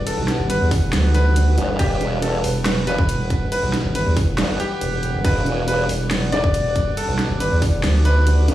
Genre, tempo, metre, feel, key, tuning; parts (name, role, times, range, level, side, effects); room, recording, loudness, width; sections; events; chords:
heavy wobble dubstep; 139 BPM; 4/4; half-time; E minor; A4 = 440 Hz
evolving wavetable pad; sustained chords; 0.0-8.5 s; E3 to F#5; -27 LUFS; equal; phaser, built-in reverb, sidechain pumping
vowel-sweep wobble bass; bass; 0.0-8.5 s; E1 to E2; -19 LUFS; equal; chorus, overdrive
bright baby grand piano; melody; 0.1-8.5 s; G4 to D5; -25 LUFS; left 1 dB; tape echo
dubstep drum kit; drums; 0.1-8.5 s; crash cymbal, hi-hat, snare drum; -27 LUFS; right 1 dB; small room ambience
electronic kick drum; drums; 0.7-7.7 s; -22 LUFS; equal; small room ambience
formant-sweep wobble bass; bass; 1.6-8.5 s; E1 to G1; -21 LUFS; equal; chorus, overdrive
light reverb; played on a big sound system in a bare room, large studio reverb, small room ambience; -17 LUFS; side -14 dB against mid
0.0-8.5 A section
0.0 Emadd9